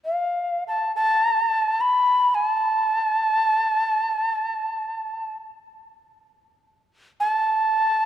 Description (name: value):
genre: japanese traditional, Japanese chamber music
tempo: free time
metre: none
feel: none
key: unclear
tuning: A4 = 440 Hz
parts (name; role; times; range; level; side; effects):
- breathy mellow shakuhachi; solo; 0.1-8.1 s; F5 to B5; -20 LUFS; equal; none
room: moderate church reverb, RT60 2.9 s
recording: none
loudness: -20 LUFS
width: side -11 dB against mid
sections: 0.0-8.1 A section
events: none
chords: none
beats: free time